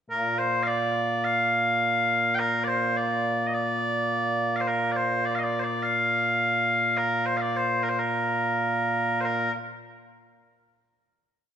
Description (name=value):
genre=scottish traditional, Scottish pipe music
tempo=105 BPM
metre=4/4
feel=straight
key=Bb major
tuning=A4 = 440 Hz
part: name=loud bright bagpipes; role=solo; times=0.1-9.5 s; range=Bb2 to G5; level=-23 LUFS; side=equal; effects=none
room=wet scoring stage reverb, RT60 2.0 s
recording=dark, warm production, nothing above 10.3 kHz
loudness=-23 LUFS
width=side -9 dB against mid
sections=0.1-9.2 A section; 9.2-11.5 final note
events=none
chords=none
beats=| 0.11 0.68 1.25 1.82 | 2.39 2.96 3.54 4.11 | 4.68 5.25 5.82 6.39 | 6.96 7.54 8.11 8.68 | 9.25